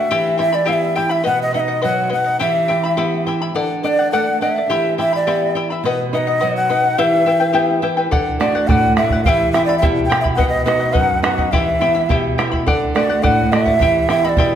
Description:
andean folk, Andean ensemble; 105 BPM; 2/4; straight; E minor; A4 = 443 Hz
breathy large quena; melody; 0.0-14.6 s; D5 to G5; -18 LUFS; equal
charango; accompaniment; 0.0-14.6 s; E4 to B5; -20 LUFS; left 4 dB
flamenco guitar; accompaniment; 0.0-14.6 s; F#2 to G4; -21 LUFS; right 4 dB
bombo; percussion; 8.1-14.5 s; -20 LUFS; right 1 dB
wet recital hall reverb, RT60 1.5 s; -14 LUFS; side -9 dB against mid
0.0-8.1 A section; 8.1-14.6 A section
0.1 Em; 1.3 B; 2.4 Em; 3.5 D; 4.7 Em; 5.8 B; 7.0 Em; 8.1 D; 9.3 Em; 10.4 B; 11.5 Em; 12.7 D; 13.8 Em

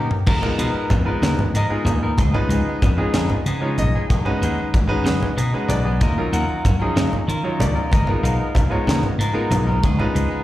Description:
electric jazz fusion; 63 BPM (dotted quarters); 6/8; straight; G# dorian; A4 = 437 Hz
clear concert grand piano; accompaniment; 0.0-10.4 s; E#3 to F#5; -24 LUFS; equal; slapback echo
clean electric guitar; stabs; 0.0-10.4 s; E#3 to Bb4; -27 LUFS; left 1 dB; analog chorus, slapback echo
tight funk drum kit; drums; 0.1-10.3 s; crash cymbal, hi-hat, kick drum, snare drum, toms; -22 LUFS; equal
slap bass; bass; 0.3-10.3 s; E#1 to D#3; -21 LUFS; equal
congas; percussion; 0.3-10.1 s; -24 LUFS; equal; slapback echo
light reverb; live gig heard through the venue's PA, recital hall reverb; -17 LUFS; side -14 dB against mid
0.3-10.4 A section
break 0.0; drum fill 0.0
0.3 G#m69; 2.2 C#9; 4.1 B6; 6.0 D#m9; 7.9 G#m69; 9.8 C#9

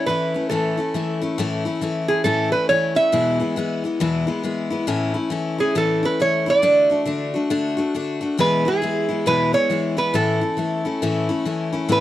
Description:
country; 137 BPM; 4/4; swing 62% on 8ths; A major; A4 = 438 Hz
lap resonator guitar; melody; 0.0-12.0 s; G#4 to E5; -20 LUFS; right 2 dB
picked steel-string acoustic guitar; accompaniment; 0.0-12.0 s; E2 to F#4; -22 LUFS; left 3 dB
little or no reverb; dry, close 1970s-style studio recording; -18 LUFS; side -13 dB against mid
0.0-11.9 A section
0.0 A; 3.1 E; 4.9 A; 6.6 D; 8.4 E; 10.1 A

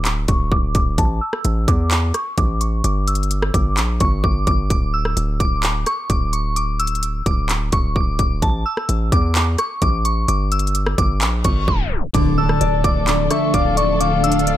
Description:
hip hop, trap; 129 BPM; 4/4; half-time; D harmonic minor; A4 = 440 Hz
hard-hitting 808-style bass; bass; 0.0-14.6 s; D1 to E2; -20 LUFS; equal
trap drum kit; drums; 0.1-14.6 s; handclaps, hi-hat, kick drum, rim click; -20 LUFS; equal
soft synth bell; melody; 0.3-14.6 s; A5 to E6; -23 LUFS; equal; chorus, low-pass filter, ping-pong delay
reverse cymbal and impact; sound effects; 11.4-14.0 s; -31 LUFS; left 1 dB
mellow electric guitar; accompaniment; 12.1-14.6 s; D3 to D5; -19 LUFS; equal; phaser
dark studio string section; sustained chords; 12.1-14.6 s; F3 to A4; -26 LUFS; right 1 dB
breathy flute-like synth lead; second line; 12.4-14.6 s; D5 to A5; -21 LUFS; left 5 dB; chorus, ping-pong delay
little or no reverb; tape stop; -16 LUFS; side -13 dB against mid
0.0-12.1 A section; 12.1-14.6 B section
filter sweep on synth bell 0.0-4.7; reverse cymbal 11.4-12.1; tape stop 11.7-12.1; impact 12.1-14.0
0.0 N.C.; 1.0 A5; 2.8 G5; 4.7 Dsus2; 8.4 A5; 10.3 G5; 12.1 Dm

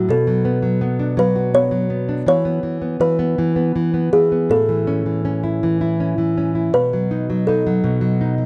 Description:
children's music, lullaby; 82 BPM; 3/4; rubato; A4 = 442 Hz
kalimba; melody; 0.0-8.2 s; F#4 to C#5; -22 LUFS; equal
nylon-string guitar; accompaniment; 0.0-8.5 s; A2 to F#4; -21 LUFS; equal
light reverb; dry, close 1970s-style studio recording; -18 LUFS; mono
0.0-8.5 A section
0.1 Bmadd9; 2.3 E5; 4.5 A; 6.7 B

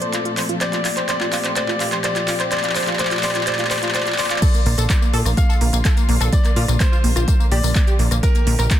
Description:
progressive house; 126 BPM; 4/4; straight; Bb major; A4 = 440 Hz
clear grand piano; melody; 0.0-8.8 s; Bb4 to F5; -25 LUFS; left 2 dB; digital delay
clear symphonic string section; sustained chords; 0.0-8.8 s; Bb2 to A4; -28 LUFS; left 2 dB; sidechain pumping
tight sequenced synth; arpeggios; 0.0-8.8 s; Bb3 to C5; -25 LUFS; right 1 dB; chorus, sidechain pumping, dub echo
deep house drum kit; drums; 0.0-8.8 s; crash cymbal, handclaps, hi-hat, rim click, tambourine; -23 LUFS; equal
electronic kick drum; drums; 4.4-8.8 s; -17 LUFS; equal
plucky analog bass; bass; 4.7-8.7 s; Bb1 to Bb2; -18 LUFS; equal; sidechain pumping
light reverb; dense, heavily limited modern master; -16 LUFS; side -11 dB against mid
0.0-4.4 A section; 4.4-8.8 B section
build-up 0.0-4.4; drum fill 0.0-4.4; filter sweep on synth arpeggio sound 0.0-4.4; drop 4.4-8.8
0.0 F/Bb; 4.4 Bb

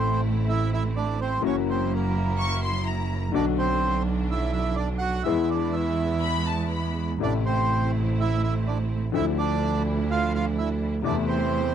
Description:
tango; 125 BPM; 4/4; rubato; A harmonic minor; A4 = 440 Hz
bandoneon; melody; 0.0-11.7 s; A#3 to F#5; -28 LUFS; right 4 dB
clear upright piano; accompaniment; 0.0-11.7 s; A1 to A4; -29 LUFS; left 11 dB
bright symphonic string section; stabs; 0.0-11.7 s; F3 to E4; -34 LUFS; right 5 dB
clear double bass; bass; 0.0-11.7 s; F#1 to E2; -26 LUFS; right 2 dB
warm studio violin section; second line; 2.4-3.2, 6.2-7.1 s; A5 to C#6; -30 LUFS; left 4 dB
little or no reverb; dry, close 1970s-style studio recording; -23 LUFS; side -9 dB against mid
0.0-11.7 A section
0.0 Am; 1.4 F#7; 3.3 Bm; 5.3 E; 7.2 Am; 9.1 Dmadd9; 11.0 Am/E

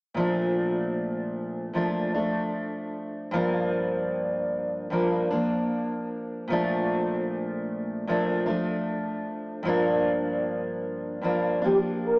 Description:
indie pop; 76 BPM; 4/4; straight; Bb major; A4 = 442 Hz
fingerpicked steel-string acoustic guitar; accompaniment; 0.1-12.2 s; G2 to D4; -25 LUFS; equal; wide subtle chorus, vibrato effect
warm velvety synth lead; melody; 11.6-12.2 s; G4 to Bb4; -22 LUFS; equal; ensemble chorus
wet spring reverb, RT60 2.0 s; worn, warbling old tape, cassette tape, warbly pitch drift, small speaker sound; -25 LUFS; side -32 dB against mid
0.2-12.2 A section
0.2 Bbmaj7; 3.3 Gm7; 6.5 Bbmaj7; 9.6 Gm7

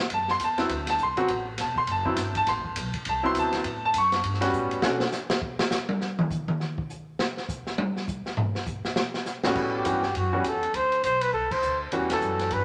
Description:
jazz, small-group swing and bop; 203 BPM; 4/4; swing 61% on 8ths; A4 = 440 Hz
clear upright piano; accompaniment; 0.1-5.0, 9.4-12.6 s; A2 to C#6; -28 LUFS; equal
upright bass; bass; 0.1-5.0, 9.6-12.6 s; D1 to B2; -37 LUFS; equal
open jazz drum kit; drums; 0.1-12.6 s; crash cymbal, hi-hat, kick drum, ride cymbal, snare drum, toms; -32 LUFS; equal
breathy trumpet; melody; 9.8-12.6 s; F#4 to C5; -28 LUFS; equal
wet large studio reverb, RT60 1.5 s; -27 LUFS; mono
0.0-9.6 A section; 9.6-12.6 B section
drum solo 4.8-9.6; band accent 11.5
0.1 D13; 3.6 A13; 4.8 Bm7; 6.0 N.C.; 9.0 A13; 10.7 Bm; 11.9 A13

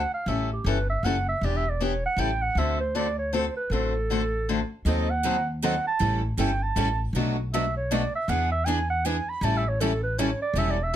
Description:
acoustic string swing (jazz manouche); 158 BPM; 3/4; swing 61% on 8ths; A mixolydian; A4 = 440 Hz
mellow clarinet; melody; 0.0-11.0 s; G4 to B5; -28 LUFS; right 3 dB
upright bass; bass; 0.0-11.0 s; E1 to E2; -28 LUFS; equal
picked steel-string acoustic guitar; accompaniment; 0.3-11.0 s; B2 to A4; -29 LUFS; left 4 dB
picked steel-string acoustic guitar; accompaniment; 4.9-10.8 s; B2 to B4; -32 LUFS; right 6 dB
light reverb; close, detailed microphones; -23 LUFS; side -11 dB against mid
0.0-11.0 A section
clarinet solo 0.0-11.0
0.3 A7; 1.4 Em7; 2.2 A7; 2.6 D7; 4.9 D#dim7; 6.0 A7; 7.1 Bm7; 8.3 E7; 9.4 A7

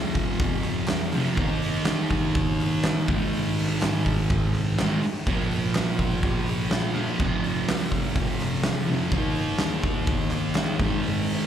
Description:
garage rock duo or trio; 124 BPM; 4/4; straight; A4 = 442 Hz
fuzz guitar; riff; 0.0-11.5 s; F2 to Eb4; -24 LUFS; equal; distortion, slapback echo
oversized low-tuned drum kit; drums; 0.2-11.4 s; crash cymbal, hi-hat, kick drum, snare drum; -26 LUFS; equal
group handclap; percussion; 0.6-10.7 s; -39 LUFS; right 1 dB
light reverb, studio ambience; live gig heard through the venue's PA, club reverb; -22 LUFS; side -9 dB against mid
0.0-11.5 A section
0.0 F5; 1.4 Eb5; 3.1 Ab5; 5.3 Bb5; 7.2 F5; 9.1 Eb5; 10.8 Ab5

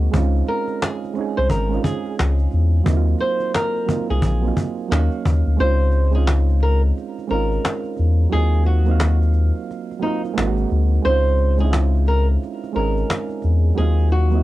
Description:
lo-fi hip hop; 88 BPM; 4/4; swing 62% on 16ths; A4 = 439 Hz
soft electric-piano-like synth keys; accompaniment; 0.0-14.4 s; Gb3 to F5; -25 LUFS; right 8 dB; chorus, low-pass filter, cassette tape
warm sub bass; bass; 0.0-14.4 s; Ab1 to Fb2; -17 LUFS; left 1 dB; transformer saturation
cajon; drums; 0.1-14.4 s; -23 LUFS; left 1 dB; cassette tape
flamenco guitar; melody; 0.5-14.4 s; Eb4 to C5; -24 LUFS; equal; low-pass filter, cassette tape
little or no reverb; home recording on cassette; -17 LUFS; side -16 dB against mid
0.0-5.6 A section; 5.6-14.4 B section
kick muted 5.6-14.4
0.1 Dbmaj9; 2.9 Ebm69; 4.9 Ebm9; 5.6 Dbmaj9; 8.3 Ebm69; 10.4 Ab7; 11.0 Dbmaj9; 13.8 Ebm69

